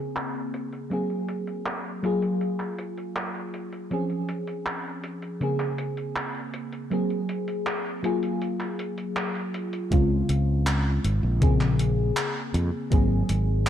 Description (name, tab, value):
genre	vaporwave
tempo	80 BPM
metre	4/4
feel	straight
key	Db major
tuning	A4 = 439 Hz
part	mellow FM electric piano	accompaniment	0.0-13.7 s	Db3 to Ab4	-27 LUFS	left 1 dB	phaser, wide subtle chorus, analog delay
part	gated 80s digital drum machine	drums	0.2-13.7 s	handclaps, hi-hat	-33 LUFS	right 1 dB	gated reverb, low-pass filter on hats, low-pass filter on snare, low-pass filter on room
part	fretless electric bass	bass	9.9-13.7 s	Ab1 to F2	-23 LUFS	equal	none
part	electronic kick drum	drums	9.9-13.1 s	none	-22 LUFS	equal	none
room	light reverb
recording	none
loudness	-24 LUFS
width	side -10 dB against mid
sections	0.0-9.9 A section; 9.9-13.7 B section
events	none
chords	0.0 Bbm9; 0.9 Ab9; 2.0 Gbmaj9; 3.9 Dbmaj7; 5.4 Bbm9; 6.9 Ab9; 8.0 Gbmaj9; 9.9 Dbmaj7; 11.4 Bbm9; 12.9 Ab9